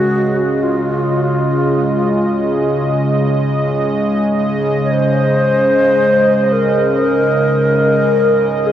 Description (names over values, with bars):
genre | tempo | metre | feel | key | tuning
ambient | free time | none | none | Db major | A4 = 439 Hz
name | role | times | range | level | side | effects
alto flute | melody | 0.0-8.7 s | F4 to Db5 | -15 LUFS | left 1 dB | ping-pong delay
warm analog pad | sustained chords | 0.0-8.7 s | Db3 to Eb5 | -15 LUFS | right 1 dB | chorus
room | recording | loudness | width
wet huge ambient reverb, RT60 8.3 s | worn, warbling old tape, cassette tape, warbly pitch drift | -12 LUFS | side -10 dB against mid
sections
0.0-8.7 A section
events
none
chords
0.0 Db